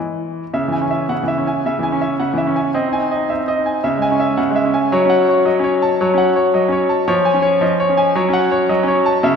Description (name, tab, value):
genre	classical-period piano sonatina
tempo	111 BPM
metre	4/4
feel	rubato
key	C# minor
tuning	A4 = 440 Hz
part	bright grand piano	solo	0.0-9.4 s	C#3 to A5	-14 LUFS	equal	none
room	wet church reverb, RT60 3.0 s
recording	recorded in a church or concert hall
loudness	-14 LUFS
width	side -6 dB against mid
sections	0.5-9.4 A section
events	none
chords	0.0 N.C.; 0.5 C#m; 2.8 G#/B#; 3.8 C#m; 4.9 F#m; 7.1 C#/E#; 8.2 F#m